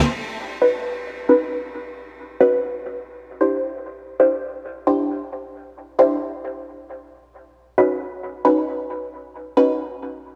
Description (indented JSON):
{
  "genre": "breakbeat",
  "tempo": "134 BPM",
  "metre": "4/4",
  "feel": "straight",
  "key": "unclear",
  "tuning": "A4 = 441 Hz",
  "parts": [
    { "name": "filtered dub chord stab", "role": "stabs", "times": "0.6-9.7 s", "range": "C#4 to B#4", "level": "-21 LUFS", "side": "equal", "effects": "phaser, lush chorus, dub echo" }
  ],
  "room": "moderate lush hall reverb, RT60 2.2 s",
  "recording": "faint mains hum",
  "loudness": "-21 LUFS",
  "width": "mono",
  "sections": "0.1-10.4 A section",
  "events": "none",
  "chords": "0.1 C#9sus4; 3.6 D9sus4; 7.2 C#9sus4"
}